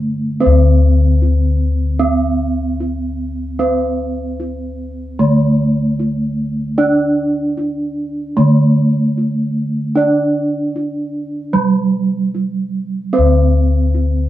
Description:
Javanese gamelan; 75 BPM; 4/4; straight; D slendro; A4 = 439 Hz
gamelan-type bronze metallophone; accompaniment; 0.0-14.3 s; G3-35c to D4; -17 LUFS; right 2 dB
gamelan-type bossed gongs; bass; 0.0-14.3 s; D2 to D5; -15 LUFS; left 1 dB
moderate studio reverb, RT60 0.5 s; band playing live in one room; -13 LUFS; side -14 dB against mid
0.4-14.3 A section
| 0.41 1.21 2.00 2.80 | 3.60 4.39 5.19 5.98 | 6.78 7.57 8.37 9.16 | 9.96 10.75 11.55 12.34 | 13.14 13.94

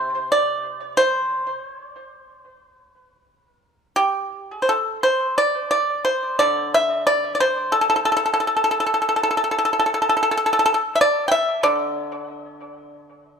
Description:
chinese traditional, Chinese solo plucked strings; 79-96 BPM; 4/4; rubato; D shang mode; A4 = 440 Hz
pipa; solo; 0.0-13.4 s; C3 to G5; -18 LUFS; equal
light reverb; close, detailed microphones; -18 LUFS; side -6 dB against mid
0.0-5.0 A section; 5.0-13.4 B section
0.31 0.95 1.61 | 2.26 2.92 3.60 4.33 | 5.04 5.72 6.41 7.09 | 7.75 8.41 9.07 9.73 | 10.38 11.02 11.65 12.29 | 12.94

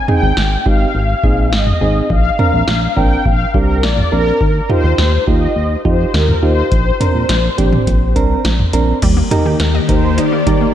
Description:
synth-pop; 104 BPM; 4/4; straight; A4 = 435 Hz
mellow synth brass; melody; 0.0-10.7 s; Bb4 to G5; -19 LUFS; left 2 dB; chorus, diffuse ambient delay
soft electric-piano-like synth keys; accompaniment; 0.1-10.7 s; C4 to Bb4; -19 LUFS; right 4 dB; chorus
electro analog drum machine; drums; 0.1-10.6 s; crash cymbal, hi-hat, kick drum, snare drum, toms; -17 LUFS; equal
chorused synth bass; bass; 0.2-10.7 s; Ab1 to F2; -15 LUFS; equal
string machine, violas; sustained chords; 9.0-10.7 s; Eb3 to G4; -18 LUFS; left 2 dB; ensemble chorus
analog pluck; arpeggios; 9.0-10.7 s; G3 to Eb5; -21 LUFS; right 1 dB; chorus, diffuse ambient delay
moderate lush hall reverb, RT60 2.3 s; dreamy mix soaked in reverb; -11 LUFS; side -10 dB against mid
0.0-9.0 A section; 9.0-10.7 B section
0.0 Ab; 2.1 Bbadd9; 4.4 Ebadd9; 6.7 Bbadd9; 9.0 Eb
0.37 0.95 1.52 | 2.10 2.68 3.25 3.83 | 4.41 4.99 5.56 6.14 | 6.72 7.29 7.87 8.45 | 9.02 9.60 10.18

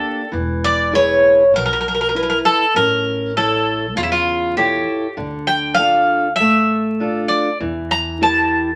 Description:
greek folk, Greek bouzouki band; 99 BPM; 4/4; straight; D harmonic minor; A4 = 440 Hz
Greek bouzouki; melody; 0.0-8.8 s; E4 to Bb5; -18 LUFS; equal
fingerpicked steel-string acoustic guitar; accompaniment; 0.0-8.7 s; B2 to C#5; -24 LUFS; equal
upright bass; bass; 0.3-8.8 s; E1 to E2; -32 LUFS; equal
moderate studio reverb, RT60 0.8 s; vinyl crackle; -17 LUFS; mono
0.0-8.8 A section
0.3 E; 2.8 A; 5.2 Dm; 7.6 Edim
| 0.34 0.94 1.55 2.15 | 2.76 3.36 3.97 4.57 | 5.18 5.78 6.39 6.99 | 7.60 8.20

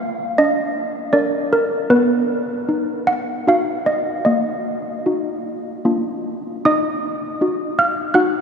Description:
classical, tune for handbells; 78 BPM; 3/4; straight; Eb minor; A4 = 435 Hz
malleted handbells; solo; 0.0-8.4 s; Bb3 to Gb6; -17 LUFS; equal
wet cathedral reverb, RT60 5.8 s; heard from further back in the room; -17 LUFS; side -6 dB against mid
0.0-6.6 A section; 6.6-8.4 B section
0.0 Bb; 1.9 B; 4.2 Ebm/Bb; 5.8 Bb; 6.6 Ebm
0.36 1.13 | 1.90 2.67 3.45 | 4.25 5.05 5.84 | 6.63 7.40 8.17

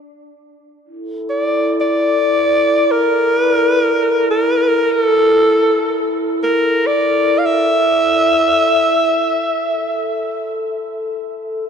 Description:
world meditative, free-time meditation music; free time; A4 = 440 Hz
glass harmonica; texture; 0.8-11.7 s; E4 to A4; -20 LUFS; left 1 dB
growling alto saxophone; melody; 1.3-10.5 s; A4 to F5; -14 LUFS; equal; ping-pong delay
wet cathedral reverb, RT60 5.9 s; dark, warm production, nothing above 10.5 kHz; -13 LUFS; side -7 dB against mid
0.1-11.7 A section
free time

